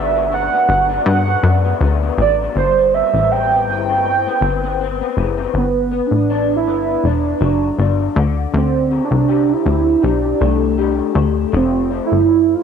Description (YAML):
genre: indie pop, bedroom pop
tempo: 80 BPM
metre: 4/4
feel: swing 55% on 16ths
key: G major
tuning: A4 = 439 Hz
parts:
  - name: warm velvety synth lead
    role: melody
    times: 0.0-12.6 s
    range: B3 to G5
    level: -16 LUFS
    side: right 6 dB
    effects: lush chorus
  - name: electric guitar through a small old amp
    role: accompaniment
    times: 0.0-12.6 s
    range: G2 to G4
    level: -21 LUFS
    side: left 13 dB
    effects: ensemble chorus, warbly pitch drift
  - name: plucky analog bass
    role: bass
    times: 0.0-12.6 s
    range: E1 to G2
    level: -18 LUFS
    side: left 2 dB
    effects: none
room: moderate plate reverb, RT60 3.0 s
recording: 1960s-style stereo with parts hard left and right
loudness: -14 LUFS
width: side -7 dB against mid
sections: 0.0-5.6 A section; 5.6-12.6 B section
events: none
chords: 0.0 Bm/G; 2.6 Cmaj7/G; 5.6 Gmaj7; 8.2 D7sus4; 11.5 Fmaj7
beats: 0.32 1.07 1.82 | 2.56 3.31 4.06 4.80 | 5.55 6.30 7.05 7.80 | 8.54 9.29 10.04 10.79 | 11.54 12.29